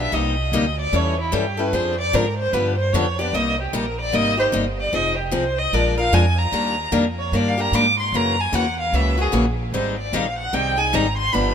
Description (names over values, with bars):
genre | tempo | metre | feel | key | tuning
acoustic string swing (jazz manouche) | 150 BPM | 4/4 | swing 63% on 8ths | C minor | A4 = 440 Hz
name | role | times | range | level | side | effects
warm violin | melody | 0.0-11.5 s | E4 to D6 | -22 LUFS | right 1 dB | none
picked steel-string acoustic guitar | accompaniment | 0.0-11.5 s | C3 to Bb4 | -23 LUFS | left 3 dB | none
upright bass | bass | 0.0-11.5 s | F1 to Ab2 | -24 LUFS | right 1 dB | none
room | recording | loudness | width
light reverb | minimal, uncompressed stereo recording | -18 LUFS | side -8 dB against mid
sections
0.0-3.3 A section; 3.3-11.5 A section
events
violin solo 0.0-11.5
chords
0.1 Cm7; 0.9 A7; 1.7 Dm7b5; 2.5 G7; 3.3 Cm7; 4.9 Fm7; 5.7 Bb7; 6.5 Ebmaj7; 8.1 F#7; 9.7 Abmaj7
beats
| 0.12 0.52 0.93 1.32 | 1.73 2.13 2.53 2.93 | 3.33 3.73 4.13 4.53 | 4.93 5.33 5.73 6.13 | 6.53 6.93 7.33 7.73 | 8.13 8.53 8.94 9.34 | 9.74 10.14 10.54 10.94 | 11.34